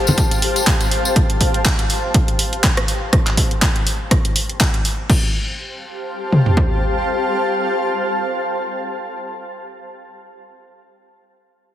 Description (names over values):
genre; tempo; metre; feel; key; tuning
piano house; 122 BPM; 4/4; swing 56% on 16ths; unclear; A4 = 440 Hz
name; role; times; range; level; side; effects
granular cloud pad; texture; 0.0-9.3 s; G4 to A5; -22 LUFS; left 1 dB; built-in reverb, sidechain pumping
tambourine and congas; percussion; 0.1-1.1 s; none; -20 LUFS; left 2 dB; none
garage drum kit; drums; 0.2-5.2 s; crash cymbal, handclaps, hi-hat, rim click; -21 LUFS; equal; overdrive
punchy analog drum machine; drums; 0.2-6.7 s; kick drum, toms; -16 LUFS; equal; none
room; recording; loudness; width
light reverb, digital ambience; heavily compressed radio sound; -15 LUFS; side -12 dB against mid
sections
0.0-5.1 A section; 5.1-9.0 B section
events
drop 0.0-5.1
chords
0.0 G9sus4; 3.1 N.C.; 5.1 G9sus4